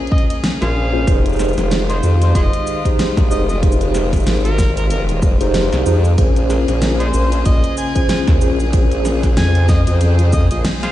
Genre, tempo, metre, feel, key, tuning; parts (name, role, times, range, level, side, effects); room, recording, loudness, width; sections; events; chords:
glitch hop; 94 BPM; 4/4; swing 57% on 16ths; F minor; A4 = 436 Hz
rich chamber string section; sustained chords; 0.0-10.9 s; Db3 to C5; -26 LUFS; left 2 dB; sidechain pumping
mellow tine electric piano; stabs; 0.0-10.5 s; Db4 to C5; -21 LUFS; equal; medium stereo tremolo, vintage 12-bit sampler grit, sidechain pumping, ping-pong delay
overdriven harmonica; melody; 0.1-10.9 s; Eb4 to Ab5; -26 LUFS; equal; ping-pong delay
electronic kick drum; drums; 0.1-10.5 s; -15 LUFS; equal; studio ambience
pop drum kit; drums; 0.1-10.9 s; hi-hat, shaker, snare drum; -24 LUFS; equal; studio ambience
formant-sweep wobble bass; bass; 0.6-10.6 s; F1 to F2; -16 LUFS; equal; chorus, overdrive
little or no reverb; played on a big sound system in a bare room, stone room reverb, vinyl crackle, nothing above 10.4 kHz; -13 LUFS; side -14 dB against mid
0.0-10.9 A section
break 10.6; band accent 10.6
0.0 Bbm7; 1.1 Fm7; 6.2 Bbm7